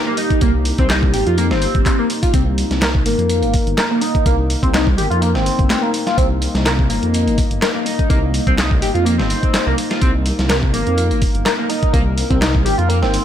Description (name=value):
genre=breakbeat, breaks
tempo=125 BPM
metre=4/4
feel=swing 54% on 16ths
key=C minor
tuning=A4 = 440 Hz
part: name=dark analog pad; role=sustained chords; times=0.0-13.2 s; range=Bb3 to Eb5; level=-24 LUFS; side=equal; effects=chorus, sidechain pumping
part: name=overdriven synth lead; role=riff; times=0.1-13.2 s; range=Bb3 to Bb4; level=-20 LUFS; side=equal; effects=tube saturation, lush chorus, dub echo
part: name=dusty soul sampler-style drum kit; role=drums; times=0.2-13.2 s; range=hi-hat, kick drum, snare drum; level=-19 LUFS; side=equal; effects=none
part: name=punchy analog drum machine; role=drums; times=0.2-13.2 s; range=handclaps, hi-hat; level=-26 LUFS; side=equal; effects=none
part: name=dark detuned saw bass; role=bass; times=0.4-13.2 s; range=G1 to F2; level=-18 LUFS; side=equal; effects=none
room=little or no reverb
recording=none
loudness=-14 LUFS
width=side -10 dB against mid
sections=0.0-13.2 A section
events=none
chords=0.0 Cm7